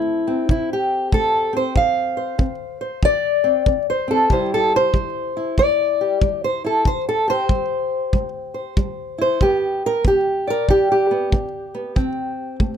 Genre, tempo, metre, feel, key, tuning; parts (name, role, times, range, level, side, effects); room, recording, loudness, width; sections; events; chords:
acoustic country blues, solo or duo; 94 BPM; 4/4; swing 65% on 8ths; C major; A4 = 439 Hz
fingerpicked old ladder-braced acoustic guitar; melody; 0.0-12.8 s; C3 to F5; -18 LUFS; equal
kick drum; drums; 0.5-12.8 s; -20 LUFS; equal
light reverb; close, detailed microphones; -17 LUFS; side -8 dB against mid
0.0-12.8 A section
0.0 F; 4.3 C; 9.4 G; 12.0 F